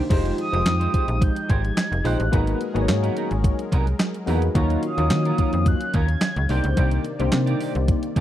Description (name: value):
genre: early-eighties boogie funk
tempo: 108 BPM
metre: 4/4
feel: straight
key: unclear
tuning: A4 = 440 Hz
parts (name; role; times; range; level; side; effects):
- chorused polysynth; accompaniment; 0.0-8.0 s; Ab3 to Db5; -26 LUFS; left 3 dB; none
- brassy analog pad; sustained chords; 0.0-8.2 s; C3 to F5; -32 LUFS; left 1 dB; chorus
- clean electric guitar; riff; 0.0-8.2 s; Gb3 to D5; -32 LUFS; right 7 dB; analog chorus
- slap-like FM bass; bass; 0.1-8.2 s; F1 to Eb3; -22 LUFS; equal; none
- crisp 8-bit digital drum machine; drums; 0.1-8.2 s; crash cymbal, handclaps, hi-hat, kick drum, snare drum; -23 LUFS; equal; overdrive
- mellow horn-like synth lead; melody; 0.4-7.1 s; Eb6 to Ab6; -28 LUFS; right 1 dB; chorus, tape echo
room: little or no reverb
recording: dry, close 1970s-style studio recording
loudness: -19 LUFS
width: side -12 dB against mid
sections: 0.1-8.2 A section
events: none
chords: 0.1 Fm9; 2.3 Abm9; 4.5 Ebm9; 6.5 Cm9